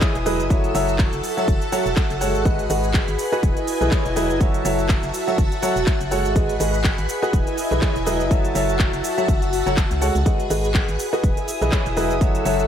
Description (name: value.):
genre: piano house.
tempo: 123 BPM.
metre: 4/4.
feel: swing 56% on 16ths.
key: F# dorian.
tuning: A4 = 440 Hz.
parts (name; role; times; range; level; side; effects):
string machine, violins; sustained chords; 0.0-12.7 s; E4 to E6; -27 LUFS; equal; ensemble chorus, sidechain pumping.
clear concert grand piano; riff; 0.0-12.7 s; E3 to F#5; -24 LUFS; equal; wide subtle chorus, sidechain pumping, ping-pong delay.
electronic kick drum; drums; 0.0-12.3 s; none; -20 LUFS; equal; small room ambience.
house drum kit; drums; 0.0-12.7 s; handclaps, hi-hat, shaker; -29 LUFS; right 1 dB; small room ambience.
airy breathy pad; texture; 0.0-12.7 s; E4 to D#6; -29 LUFS; equal; chorus, sidechain pumping.
organ-like FM bass; bass; 0.2-12.7 s; E1 to C#2; -25 LUFS; equal; tube saturation, sidechain pumping.
room: light reverb, digital ambience.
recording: none.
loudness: -18 LUFS.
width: side -9 dB against mid.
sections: 0.0-12.7 A section.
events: none.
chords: 0.0 Emaj7; 0.5 F#m7; 2.5 G#m7; 3.4 Emaj7; 4.4 F#m7; 6.4 G#m7; 7.3 Emaj7; 8.3 F#m7; 10.3 G#m7; 11.2 Emaj7.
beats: 0.02 | 0.50 0.99 1.48 1.97 | 2.46 2.94 3.43 3.92 | 4.41 4.89 5.38 5.87 | 6.36 6.84 7.33 7.82 | 8.31 8.80 9.28 9.77 | 10.26 10.75 11.23 11.72 | 12.21.